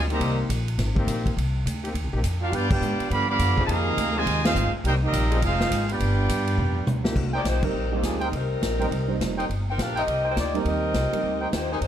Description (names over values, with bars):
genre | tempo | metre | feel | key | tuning
jazz, big band swing | 207 BPM | 4/4 | swing 62% on 8ths | C minor | A4 = 438 Hz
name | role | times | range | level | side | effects
brilliant trumpet section | melody | 0.0-0.4, 2.4-6.9 s | C4 to B5 | -26 LUFS | right 2 dB | none
clear trombone section | sustained chords | 0.0-7.4 s | Eb3 to Bb4 | -32 LUFS | left 3 dB | none
upright bass | bass | 0.0-11.9 s | F1 to Ab2 | -26 LUFS | equal | none
clear trombone section | second line | 0.1-0.4, 2.4-6.9 s | C3 to G4 | -29 LUFS | right 3 dB | none
swinging big-band drum kit | drums | 0.1-11.9 s | crash cymbal, hi-hat, kick drum, ride cymbal, snare drum, toms | -29 LUFS | equal | none
dark trumpet section | stabs | 7.3-11.8 s | Eb4 to Ab5 | -31 LUFS | equal | none
mellow saxophone section | melody | 7.4-11.9 s | Eb3 to G5 | -28 LUFS | left 2 dB | none
warm concert grand piano | accompaniment | 7.6-11.5 s | G3 to C5 | -30 LUFS | right 7 dB | none
room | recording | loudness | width
light reverb | dark, warm production | -22 LUFS | side -10 dB against mid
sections
0.0-7.2 A section; 7.2-11.9 B section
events
band accent 2.7, 4.4, 7.6; drum fill 6.6-7.2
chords
0.2 Cm7; 2.5 G7; 3.7 Fm7; 4.8 Cm7; 5.4 Fm7; 6.0 G7; 7.2 Cm7